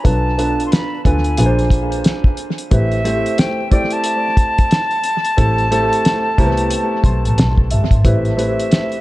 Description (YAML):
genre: hip hop, jazz-hop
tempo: 90 BPM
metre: 4/4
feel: swing 60% on 16ths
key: A minor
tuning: A4 = 440 Hz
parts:
  - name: silver concert flute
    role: melody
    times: 0.0-9.0 s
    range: E5 to C6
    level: -20 LUFS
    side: equal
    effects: tape echo
  - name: warm grand piano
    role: accompaniment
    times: 0.0-8.9 s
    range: A3 to C6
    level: -20 LUFS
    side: equal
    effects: tape echo
  - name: cloth-damped thuddy drum kit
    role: drums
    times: 0.0-9.0 s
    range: hi-hat, kick drum, snare drum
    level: -16 LUFS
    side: equal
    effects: vintage 12-bit sampler grit, tape echo
  - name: dark double bass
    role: bass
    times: 0.1-8.5 s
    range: G1 to D2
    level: -18 LUFS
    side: equal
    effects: none
room: light reverb, small room ambience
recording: echo-heavy mix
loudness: -13 LUFS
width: side -17 dB against mid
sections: 0.0-8.0 A section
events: grand piano fill 6.7-8.0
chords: 0.0 Bm7b5; 1.4 Bb9; 2.7 Am7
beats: | 0.05 0.71 1.38 2.05 | 2.71 3.38 4.05 4.71 | 5.38 6.05 6.71 7.38 | 8.05 8.71